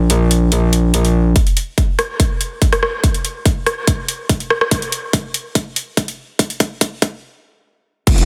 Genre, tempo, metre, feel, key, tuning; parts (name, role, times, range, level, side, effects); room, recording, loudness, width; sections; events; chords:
heavy wobble dubstep; 143 BPM; 4/4; half-time; A4 = 440 Hz
metallic wobble bass; bass; 0.0-1.3, 8.1-8.3 s; F1 to Bb1; -15 LUFS; equal; chorus, overdrive
dubstep drum kit; drums; 0.1-8.3 s; crash cymbal, hi-hat, rim click; -21 LUFS; equal; high-pass filter on hats, high-pass filter on snare, high-pass filter on cymbals
electronic kick drum; drums; 1.4-8.2 s; -18 LUFS; equal; overdrive
light reverb; dense, heavily limited modern master, high-pass filter; -17 LUFS; mono
0.0-1.4 A section; 1.4-8.1 B section
build-up 1.4-8.1; filter sweep 1.4-8.1; drum fill 4.7-7.2; stop 7.2-8.1